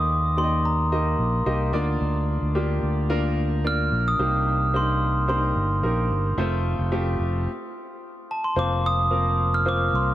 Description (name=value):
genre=piano-driven pop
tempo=110 BPM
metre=4/4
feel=straight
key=unclear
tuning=A4 = 439 Hz
part: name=glockenspiel with rubber mallets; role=melody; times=0.0-10.1 s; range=A5 to F6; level=-26 LUFS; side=equal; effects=diffuse ambient delay
part: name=clear concert grand piano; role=accompaniment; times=0.0-10.1 s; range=C3 to Eb5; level=-27 LUFS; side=equal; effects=lush chorus
part: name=fingered electric bass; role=bass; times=0.0-10.1 s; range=F1 to Eb2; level=-24 LUFS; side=equal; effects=none
room=light reverb, small room ambience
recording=none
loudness=-21 LUFS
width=side -14 dB against mid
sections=0.0-8.6 A section; 8.6-10.1 B section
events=stop 7.5-8.6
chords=0.0 Eb; 1.7 Bb/D; 4.2 Cm7; 6.4 F; 8.6 Fsus4